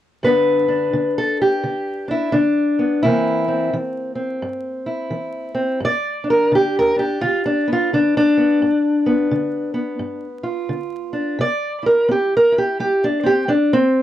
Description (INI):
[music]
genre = acoustic country blues, solo or duo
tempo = 86 BPM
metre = 4/4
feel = swing 62% on 8ths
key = G mixolydian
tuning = A4 = 440 Hz
[part]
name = fingerpicked steel-string acoustic guitar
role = solo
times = 0.2-14.0 s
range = G2 to D5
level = -16 LUFS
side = equal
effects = none
[sound]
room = light reverb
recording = dry, close 1970s-style studio recording, vinyl crackle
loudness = -16 LUFS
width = side -12 dB against mid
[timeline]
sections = 0.2-14.0 A section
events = steel-string acoustic guitar solo 0.2-14.0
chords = 0.2 G; 3.0 C7; 5.8 G7; 11.4 C7